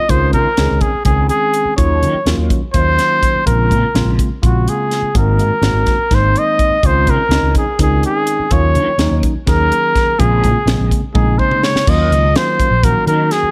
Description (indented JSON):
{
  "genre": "electric jazz fusion",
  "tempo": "250 BPM (eighths)",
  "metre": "7/8",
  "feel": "straight",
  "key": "unclear",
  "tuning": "A4 = 440 Hz",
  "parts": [
    { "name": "mellow trumpet", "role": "melody", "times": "0.0-13.5 s", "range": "Gb4 to Eb5", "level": "-18 LUFS", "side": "equal", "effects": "none" },
    { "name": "barky tine electric piano", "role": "accompaniment", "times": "0.0-13.5 s", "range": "Db3 to Ab4", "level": "-23 LUFS", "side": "equal", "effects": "overdrive, phaser" },
    { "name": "fretless electric bass", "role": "bass", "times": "0.1-13.5 s", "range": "Ab1 to Eb3", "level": "-18 LUFS", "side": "equal", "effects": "ensemble chorus" },
    { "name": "crisp fusion drum kit", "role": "drums", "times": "0.1-13.4 s", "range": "crash cymbal, hi-hat, kick drum, snare drum, toms", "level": "-20 LUFS", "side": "equal", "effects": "none" }
  ],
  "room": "light reverb, studio ambience",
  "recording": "none",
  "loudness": "-14 LUFS",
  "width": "mono",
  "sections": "0.0-11.9 A section; 11.9-13.5 B section",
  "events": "drum fill 11.2-11.9",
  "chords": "0.1 Dbmaj7; 1.8 Ebm9; 3.5 Bbm9; 5.1 Ab9; 6.8 Dbmaj7; 8.5 Ebm9; 10.2 Bbm9; 11.9 Ebm9"
}